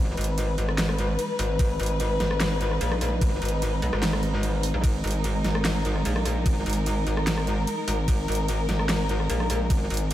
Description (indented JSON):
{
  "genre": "heavy wobble dubstep",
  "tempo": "148 BPM",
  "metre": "4/4",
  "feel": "half-time",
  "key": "G# minor",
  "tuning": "A4 = 439 Hz",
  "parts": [
    { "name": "dark studio string section", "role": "sustained chords", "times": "0.0-10.1 s", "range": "G#3 to B4", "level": "-29 LUFS", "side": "left 1 dB", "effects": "sidechain pumping" },
    { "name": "metallic wobble bass", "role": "bass", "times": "0.0-10.1 s", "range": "G#1 to B1", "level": "-26 LUFS", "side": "equal", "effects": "chorus, overdrive" },
    { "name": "dubstep drum kit", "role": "drums", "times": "0.2-10.1 s", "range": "handclaps, hi-hat, ride cymbal, rim click, snare drum", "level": "-30 LUFS", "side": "right 1 dB", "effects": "overdrive" },
    { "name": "electronic kick drum", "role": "drums", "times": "1.6-9.8 s", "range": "none", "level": "-24 LUFS", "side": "equal", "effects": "overdrive" }
  ],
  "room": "moderate cathedral reverb, RT60 4.9 s",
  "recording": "dreamy mix soaked in reverb",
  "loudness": "-23 LUFS",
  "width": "side -13 dB against mid",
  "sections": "0.0-10.1 A section",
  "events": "none",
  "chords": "0.0 G#m"
}